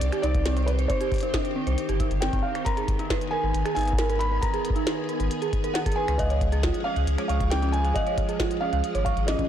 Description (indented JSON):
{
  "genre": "IDM",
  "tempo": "136 BPM",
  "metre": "4/4",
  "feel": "straight",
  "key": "unclear",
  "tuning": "A4 = 440 Hz",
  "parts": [
    { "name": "felt-muted upright piano", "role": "melody", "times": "0.0-9.5 s", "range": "B4 to Cb6", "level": "-30 LUFS", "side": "equal", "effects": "ping-pong delay" },
    { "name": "soft string machine", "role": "sustained chords", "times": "0.0-9.5 s", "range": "Eb3 to D5", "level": "-32 LUFS", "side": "equal", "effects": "ensemble chorus" },
    { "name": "warm sub bass", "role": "bass", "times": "0.0-9.5 s", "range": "G1 to Db2", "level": "-25 LUFS", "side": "equal", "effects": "tube saturation" },
    { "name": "glitchy drum kit", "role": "drums", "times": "0.0-9.5 s", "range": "finger snaps, hi-hat, snare drum", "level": "-33 LUFS", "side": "equal", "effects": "overdrive, studio reverb, soft clipping on snare, ping-pong delay" },
    { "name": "dark detuned synth bell", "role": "arpeggios", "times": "0.1-9.4 s", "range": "C4 to Db6", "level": "-30 LUFS", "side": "right 4 dB", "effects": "chorus, phaser, ping-pong delay" },
    { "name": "electronic kick drum", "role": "drums", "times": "0.3-9.5 s", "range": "none", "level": "-28 LUFS", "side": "equal", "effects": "studio reverb" }
  ],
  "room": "light reverb",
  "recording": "blown-out, overdriven recording, overdrive",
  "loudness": "-23 LUFS",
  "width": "side -10 dB against mid",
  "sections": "0.0-9.5 A section",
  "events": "none",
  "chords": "0.0 Cmadd9; 2.7 Abmadd9; 6.2 Db",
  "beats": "0.01 0.46 | 0.90 1.34 1.78 2.22 | 2.66 3.10 3.54 3.98 | 4.43 4.87 5.31 5.75 | 6.19 6.63 7.07 7.51 | 7.96 8.40 8.84 9.28"
}